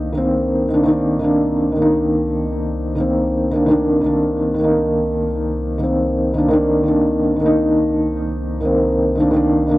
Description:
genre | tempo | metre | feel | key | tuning
trip hop | 85 BPM | 4/4 | swing 57% on 16ths | unclear | A4 = 440 Hz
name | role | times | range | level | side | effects
felt-muted upright piano | accompaniment | 0.0-9.8 s | Eb3 to Eb4 | -15 LUFS | equal | tremolo, cassette tape, tape echo
round analog bass | bass | 0.0-9.8 s | C2 | -27 LUFS | equal | none
room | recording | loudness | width
moderate studio reverb, RT60 0.5 s | home recording on cassette | -15 LUFS | side -18 dB against mid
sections
0.0-9.8 A section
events
none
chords
0.0 Cm9

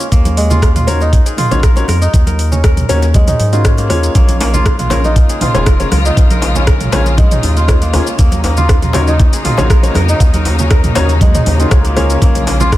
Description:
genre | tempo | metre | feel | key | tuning
afro house | 119 BPM | 4/4 | straight | unclear | A4 = 439 Hz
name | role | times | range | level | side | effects
kora | arpeggios | 0.0-12.8 s | Ab3 to Bb4 | -19 LUFS | right 1 dB | sidechain pumping, ping-pong delay
deep house drum kit | drums | 0.0-12.8 s | hi-hat, rim click, shaker, toms | -20 LUFS | right 1 dB | overdrive, small room ambience
round analog bass | bass | 0.1-12.8 s | F1 to Ab2 | -14 LUFS | equal | tube saturation, sidechain pumping
electronic kick drum | drums | 0.1-12.8 s | none | -10 LUFS | equal | small room ambience
congas | percussion | 0.1-12.7 s | none | -23 LUFS | right 3 dB | none
felt-muted upright piano | stabs | 0.9-12.8 s | Bb3 to Eb5 | -20 LUFS | left 3 dB | sidechain pumping, ping-pong delay
rich symphonic string section | sustained chords | 4.2-12.8 s | Db3 to F4 | -22 LUFS | left 1 dB | sidechain pumping
djembe | percussion | 4.2-12.8 s | none | -23 LUFS | left 2 dB | none
room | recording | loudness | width
small room reverb | none | -9 LUFS | side -15 dB against mid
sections
0.0-12.8 A section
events
none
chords
0.1 Ebm7; 4.2 Bbm7; 8.2 Ebm7; 12.2 Bbm7

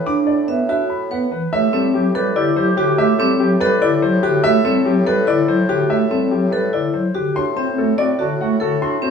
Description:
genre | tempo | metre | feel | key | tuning
classical, minimalist pattern music | 288 BPM (eighths) | 7/8 | straight | A dorian | A4 = 442 Hz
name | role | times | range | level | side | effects
warm concert grand piano | melody | 0.0-9.1 s | G4 to D6 | -20 LUFS | left 4 dB | none
warm bassoon | bass | 0.0-9.1 s | A2 | -24 LUFS | equal | none
pipe organ, stopped flute | accompaniment | 0.1-9.1 s | D3 to E4 | -21 LUFS | right 2 dB | none
vibraphone with medium hard mallets | arpeggios | 0.1-9.1 s | C4 to E5 | -20 LUFS | left 1 dB | none
mellow clarinet | second line | 1.5-4.2, 7.4-9.1 s | F#4 to G4 | -24 LUFS | right 7 dB | none
room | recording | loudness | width
moderate large studio reverb, RT60 0.9 s | small room ambience | -15 LUFS | side -6 dB against mid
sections
0.0-1.5 A section; 1.5-9.1 B section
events
none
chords
0.0 Bm/A; 1.5 Am11; 7.4 D/A

